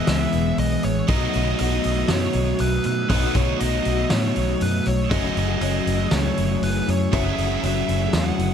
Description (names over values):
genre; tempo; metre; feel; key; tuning
rock, shoegaze and dream pop; 119 BPM; 4/4; straight; unclear; A4 = 439 Hz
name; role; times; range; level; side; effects
nasal lead guitar with a parked wah; melody; 0.0-8.5 s; B4 to F#5; -28 LUFS; left 1 dB; overdrive, tape echo
picked twelve-string acoustic guitar; arpeggios; 0.0-8.5 s; F#3 to E4; -32 LUFS; left 9 dB; analog chorus, tape echo
biting overdriven guitar; riff; 0.0-8.5 s; F#2 to E4; -26 LUFS; right 12 dB; reverse reverb
overdriven semi-hollow guitar; riff; 0.0-8.5 s; F#2 to G#4; -26 LUFS; left 9 dB; ensemble chorus
vintage muted fingered electric bass; bass; 0.1-8.5 s; E1 to B2; -24 LUFS; equal; none
loose indie drum kit; drums; 0.1-8.5 s; hi-hat, kick drum, snare drum; -27 LUFS; equal; none
room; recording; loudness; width
moderate booth ambience, RT60 0.2 s; none; -19 LUFS; side -8 dB against mid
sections
0.0-8.5 A section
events
none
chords
0.0 Emaj7; 1.1 B7; 5.1 F#m7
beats
0.08 0.58 | 1.09 1.59 2.10 2.60 | 3.10 3.61 4.11 4.62 | 5.12 5.62 6.13 6.63 | 7.13 7.63 8.14